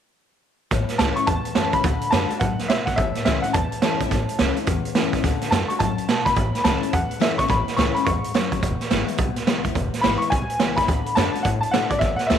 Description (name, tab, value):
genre	rockabilly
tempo	212 BPM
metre	4/4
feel	swing 62% on 8ths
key	A major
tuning	A4 = 437 Hz
part	picked steel-string acoustic guitar	accompaniment	0.7-12.4 s	E2 to F#4	-27 LUFS	left 13 dB	none
part	upright bass	bass	0.7-12.4 s	E1 to D3	-28 LUFS	equal	none
part	raw garage drum kit	drums	0.7-12.4 s	hi-hat, kick drum, snare drum	-22 LUFS	right 4 dB	none
part	clear upright piano	melody	1.0-12.4 s	D5 to C#6	-24 LUFS	left 1 dB	none
room	light reverb, small room reverb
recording	1960s-style stereo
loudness	-19 LUFS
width	side -9 dB against mid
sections	0.7-12.4 A section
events	none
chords	0.7 A; 1.8 D; 3.0 A; 5.2 D; 6.4 A; 8.6 E; 10.9 D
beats	| 0.71 0.99 1.28 1.56 | 1.84 2.13 2.41 2.69 | 2.98 3.26 3.54 3.82 | 4.11 4.39 4.67 4.95 | 5.24 5.52 5.80 6.08 | 6.37 6.65 6.93 7.21 | 7.50 7.78 8.06 8.34 | 8.62 8.91 9.19 9.47 | 9.75 10.04 10.32 10.60 | 10.88 11.17 11.45 11.73 | 12.01 12.30